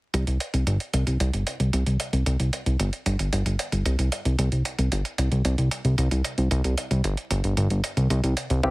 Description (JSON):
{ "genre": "italo disco", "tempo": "113 BPM", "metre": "4/4", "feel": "straight", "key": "unclear", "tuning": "A4 = 439 Hz", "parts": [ { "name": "fat analog bass", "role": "bass", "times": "0.1-8.7 s", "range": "G1 to C2", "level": "-22 LUFS", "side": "equal", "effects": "none" }, { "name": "electronic hi-hat", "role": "drums", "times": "0.1-8.7 s", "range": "none", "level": "-31 LUFS", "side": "right 2 dB", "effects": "none" }, { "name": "mellow synth brass", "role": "melody", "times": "8.6-8.7 s", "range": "B4", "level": "-36 LUFS", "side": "left 1 dB", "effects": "none" }, { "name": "dark grand piano", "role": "stabs", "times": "8.6-8.7 s", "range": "C3 to G4", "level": "-21 LUFS", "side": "left 1 dB", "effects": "none" }, { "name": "kick drum", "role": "drums", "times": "8.6-8.7 s", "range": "none", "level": "-28 LUFS", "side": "equal", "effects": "none" } ], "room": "studio reverb", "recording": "heavily compressed radio sound, multiband compression, vinyl crackle", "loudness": "-22 LUFS", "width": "side -23 dB against mid", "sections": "0.1-8.7 A section", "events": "filter sweep on analog synth bass 0.1-8.7", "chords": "0.1 C5" }